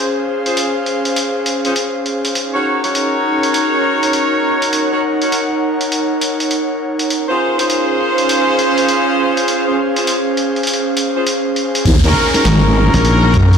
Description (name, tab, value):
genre	glitch hop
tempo	101 BPM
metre	4/4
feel	swing 64% on 16ths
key	Eb dorian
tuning	A4 = 439 Hz
part	warm horn section	stabs	0.0-13.6 s	Db4 to Db5	-16 LUFS	equal	sidechain pumping, ping-pong delay
part	airy breathy pad	texture	0.0-13.6 s	Db4 to Gb5	-18 LUFS	equal	chorus, sidechain pumping
part	boom bap sampler-style drum kit	drums	0.5-13.6 s	crash cymbal, hi-hat, snare drum	-20 LUFS	equal	none
part	wobble bass	bass	11.9-13.6 s	Ab1 to Gb2	-10 LUFS	equal	chorus
part	electronic kick drum	drums	11.9-13.5 s	none	-15 LUFS	equal	none
part	downlifter	sound effects	11.9-13.6 s	none	-22 LUFS	equal	none
part	glassy slap bass	bass	12.9-13.3 s	Bb1	-12 LUFS	left 1 dB	none
room	moderate plate reverb, RT60 1.4 s, digital ambience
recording	played on a big sound system in a bare room, stone room reverb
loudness	-13 LUFS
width	side -6 dB against mid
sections	0.0-11.9 A section; 11.9-13.6 B section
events	drop 11.9-13.6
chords	0.0 Dbmaj7; 2.4 Ebm7; 7.1 Dbmaj7; 11.9 Ebm7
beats	0.57 1.16 1.76 | 2.35 2.94 3.54 4.13 | 4.73 5.32 5.92 6.51 | 7.10 7.70 8.29 8.88 | 9.48 10.07 10.67 11.26 | 11.86 12.45 13.04